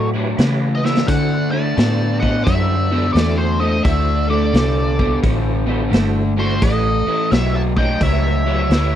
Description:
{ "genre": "blues rock power trio and southern rock", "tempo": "87 BPM", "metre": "4/4", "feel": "swing 65% on 8ths", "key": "unclear", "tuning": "A4 = 439 Hz", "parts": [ { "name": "octave-fuzz lead guitar", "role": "melody", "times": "0.0-9.0 s", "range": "C5 to A5", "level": "-23 LUFS", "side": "left 1 dB", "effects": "wah, distortion" }, { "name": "dark smooth lead guitar", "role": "second line", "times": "0.0-9.0 s", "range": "F#4 to E5", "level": "-26 LUFS", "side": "right 4 dB", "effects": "overdrive" }, { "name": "crunchy overdriven guitar", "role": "riff", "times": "0.0-9.0 s", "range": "A2 to B3", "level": "-21 LUFS", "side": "left 1 dB", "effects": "none" }, { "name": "vintage muted fingered electric bass", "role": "bass", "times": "0.0-9.0 s", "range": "G1 to D3", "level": "-19 LUFS", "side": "equal", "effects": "none" }, { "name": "percussive tonewheel organ", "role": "sustained chords", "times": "0.1-9.0 s", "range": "E4 to C#5", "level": "-29 LUFS", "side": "right 3 dB", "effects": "slow rotary speaker, overdrive, chorus vibrato" }, { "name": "raw garage drum kit", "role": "drums", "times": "0.4-8.9 s", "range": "hi-hat, kick drum, snare drum, splash cymbal", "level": "-20 LUFS", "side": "equal", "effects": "none" } ], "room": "little or no reverb", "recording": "dry, close 1970s-style studio recording", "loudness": "-15 LUFS", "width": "side -10 dB against mid", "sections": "0.0-9.0 A section", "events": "drum fill 0.7-1.1", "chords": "0.0 A7; 1.1 D7; 6.6 A7" }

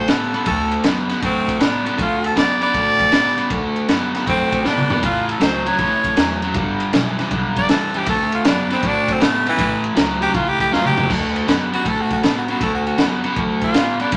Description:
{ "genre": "electric blues shuffle", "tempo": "158 BPM", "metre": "4/4", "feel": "swing 67% on 8ths", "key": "D major", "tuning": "A4 = 440 Hz", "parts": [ { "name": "growling tenor saxophone", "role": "melody", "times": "0.0-14.2 s", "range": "E3 to D5", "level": "-22 LUFS", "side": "equal", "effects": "none" }, { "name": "overdriven electric guitar", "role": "riff", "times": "0.0-14.2 s", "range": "G2 to B3", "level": "-23 LUFS", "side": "equal", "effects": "none" }, { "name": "upright bass", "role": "bass", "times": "0.1-14.2 s", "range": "G1 to A2", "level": "-33 LUFS", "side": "equal", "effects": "none" }, { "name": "crunchy breakbeat drum kit", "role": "drums", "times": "0.1-14.2 s", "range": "crash cymbal, kick drum, ride cymbal, snare drum, toms", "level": "-23 LUFS", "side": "equal", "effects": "none" } ], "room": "wet club reverb, RT60 0.7 s", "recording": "none", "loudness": "-18 LUFS", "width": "mono", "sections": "0.0-11.1 A section; 11.1-14.2 A section", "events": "tenor saxophone solo 0.0-11.1, 11.1-14.2; drum fill 4.6-5.0, 10.7-11.1", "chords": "0.0 D; 5.0 A; 6.5 G; 8.1 D; 9.6 A; 11.1 D" }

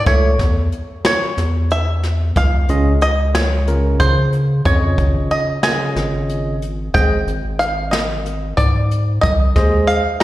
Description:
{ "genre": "progressive instrumental, band music in an uneven meter", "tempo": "183 BPM (eighths)", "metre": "7/8", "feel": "straight", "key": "unclear", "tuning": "A4 = 442 Hz", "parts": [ { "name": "bluegrass banjo", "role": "melody", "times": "0.0-10.2 s", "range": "C5 to Bb5", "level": "-20 LUFS", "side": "right 1 dB", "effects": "slapback echo" }, { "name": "rubbery square bass", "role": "bass", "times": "0.0-9.9 s", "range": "Ab1 to Db3", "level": "-17 LUFS", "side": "equal", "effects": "none" }, { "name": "barky tine electric piano", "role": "accompaniment", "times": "0.1-10.0 s", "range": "Db3 to E5", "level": "-21 LUFS", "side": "right 1 dB", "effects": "medium stereo tremolo, slapback echo" }, { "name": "jazz brush drum kit", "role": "drums", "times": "0.1-10.2 s", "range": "hi-hat, kick drum, snare drum", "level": "-19 LUFS", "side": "equal", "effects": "none" } ], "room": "light reverb, studio reverb", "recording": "live gig heard through the venue's PA, recital hall reverb", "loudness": "-14 LUFS", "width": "side -15 dB against mid", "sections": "0.0-10.2 A section", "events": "none", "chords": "0.0 A; 2.4 Dbadd9; 6.9 Ab" }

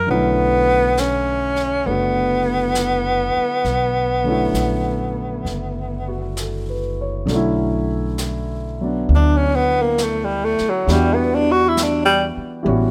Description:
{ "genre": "jazz ballad", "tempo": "67 BPM", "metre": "4/4", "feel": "swing 68% on 8ths", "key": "B minor", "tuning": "A4 = 440 Hz", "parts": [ { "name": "breathy tenor saxophone", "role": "melody", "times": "0.0-12.2 s", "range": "F#3 to F#4", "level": "-20 LUFS", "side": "equal", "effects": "none" }, { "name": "warm grand piano", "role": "accompaniment", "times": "0.0-12.9 s", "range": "D3 to C#5", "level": "-25 LUFS", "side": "equal", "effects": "none" }, { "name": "upright bass", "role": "bass", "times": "0.0-12.9 s", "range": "F#1 to E2", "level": "-26 LUFS", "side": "equal", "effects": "none" }, { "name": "jazz brush drum kit", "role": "drums", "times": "0.1-12.9 s", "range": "brushed snare drum, hi-hat, snare drum", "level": "-32 LUFS", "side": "equal", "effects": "none" } ], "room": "moderate large studio reverb, RT60 1.3 s", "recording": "none", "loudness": "-19 LUFS", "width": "mono", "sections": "0.0-7.3 A section; 7.3-12.9 B section", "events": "tenor saxophone solo 7.3-12.9", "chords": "0.1 Bm11; 10.9 Em7" }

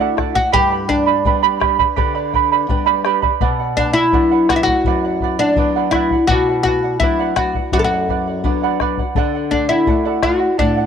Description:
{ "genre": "andean folk, Andean ensemble", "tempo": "84 BPM", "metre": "4/4", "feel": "straight", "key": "B minor", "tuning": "A4 = 439 Hz", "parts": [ { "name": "oud", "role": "melody", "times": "0.0-10.9 s", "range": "D4 to A4", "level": "-16 LUFS", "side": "left 2 dB", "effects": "none" }, { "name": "charango", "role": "accompaniment", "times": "0.0-10.9 s", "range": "G4 to B5", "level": "-19 LUFS", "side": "right 13 dB", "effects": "none" }, { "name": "nylon-string guitar", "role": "accompaniment", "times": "0.0-10.9 s", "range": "F#2 to F#4", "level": "-23 LUFS", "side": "left 3 dB", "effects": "none" }, { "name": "bombo", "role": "percussion", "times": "0.2-10.8 s", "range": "none", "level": "-22 LUFS", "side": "left 2 dB", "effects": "none" } ], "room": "light reverb, small room ambience", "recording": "1960s-style stereo", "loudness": "-14 LUFS", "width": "side -7 dB against mid", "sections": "0.0-10.9 A section", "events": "none", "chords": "0.0 D; 0.5 G; 3.4 Bm; 9.2 D" }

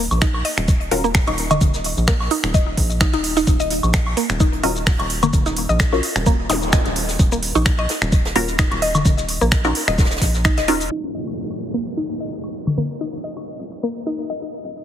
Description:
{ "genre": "minimal techno", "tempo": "129 BPM", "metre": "4/4", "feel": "swing 55% on 16ths", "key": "Eb minor", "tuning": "A4 = 438 Hz", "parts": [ { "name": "mallet-like synth pluck", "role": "riff", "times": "0.0-14.4 s", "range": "Bb3 to Eb5", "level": "-24 LUFS", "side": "equal", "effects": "chorus, phaser, sidechain pumping, ping-pong delay" }, { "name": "rubbery square bass", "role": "bass", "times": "0.0-14.8 s", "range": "Eb1 to Bb1", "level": "-24 LUFS", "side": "equal", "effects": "sidechain pumping, high-pass filter" }, { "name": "garage drum kit", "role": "drums", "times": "0.1-14.8 s", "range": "finger snaps, hi-hat, shaker", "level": "-23 LUFS", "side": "equal", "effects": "low-pass filter on cymbals, low-pass filter on perc, low-pass filter on hats, low-pass filter on snare, low-pass filter on room" }, { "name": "electronic woodblock and toms", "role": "percussion", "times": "0.1-13.5 s", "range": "none", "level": "-24 LUFS", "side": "left 2 dB", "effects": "ping-pong delay" }, { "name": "electronic kick drum", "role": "drums", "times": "0.2-10.6 s", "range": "none", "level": "-18 LUFS", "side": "equal", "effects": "none" }, { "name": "natural country drum kit", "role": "drums", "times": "0.2-10.9 s", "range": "hi-hat, snare drum", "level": "-32 LUFS", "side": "right 2 dB", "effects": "sidechain pumping on hats, high-pass filter on hats, high-pass filter on snare, high-pass filter on room" }, { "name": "filtered dub chord stab", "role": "stabs", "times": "0.9-1.0, 4.6-10.8 s", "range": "Db4 to Bb4", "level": "-25 LUFS", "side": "left 4 dB", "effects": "phaser, ping-pong delay" }, { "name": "zap and downlifter", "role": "sound effects", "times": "6.5-6.6, 10.9-14.6 s", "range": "none", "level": "-29 LUFS", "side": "equal", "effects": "none" } ], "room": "light reverb", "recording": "heavily compressed radio sound, multiband compression, low-pass filter", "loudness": "-17 LUFS", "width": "side -10 dB against mid", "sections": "0.0-10.9 A section; 10.9-14.8 B section", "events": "drop 0.0-10.9; filter sweep on drum 10.9-14.8; filter sweep on synth arpeggio sound 10.9-14.8; filter sweep 10.9-14.8", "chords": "0.0 Eb5" }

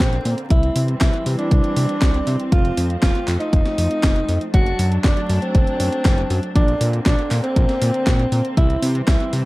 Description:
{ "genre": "italo disco", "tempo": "119 BPM", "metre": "4/4", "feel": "straight", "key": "unclear", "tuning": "A4 = 440 Hz", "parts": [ { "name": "mellow alto saxophone", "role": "melody", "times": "0.0-9.3 s", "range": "C4 to F#4", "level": "-23 LUFS", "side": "equal", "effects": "tape echo" }, { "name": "muted studio string section", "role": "sustained chords", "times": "0.0-9.5 s", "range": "D3 to D4", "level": "-27 LUFS", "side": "equal", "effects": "none" }, { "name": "fat analog bass", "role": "bass", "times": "0.0-9.4 s", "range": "F1 to C3", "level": "-20 LUFS", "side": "equal", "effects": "none" }, { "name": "electronic kick drum", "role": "drums", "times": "0.0-9.2 s", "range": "none", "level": "-17 LUFS", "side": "equal", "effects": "none" }, { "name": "gated 80s digital drum machine", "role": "drums", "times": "0.0-9.4 s", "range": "handclaps, hi-hat, snare drum", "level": "-25 LUFS", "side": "equal", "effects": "gated reverb, gated reverb snare" } ], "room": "light reverb, digital ambience", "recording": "dark, warm production, vinyl crackle", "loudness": "-16 LUFS", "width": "side -20 dB against mid", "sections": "0.0-9.5 A section", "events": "none", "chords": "0.0 Bbadd9; 0.5 C; 2.5 F; 4.5 D/F#; 6.6 Bbadd9; 8.6 C" }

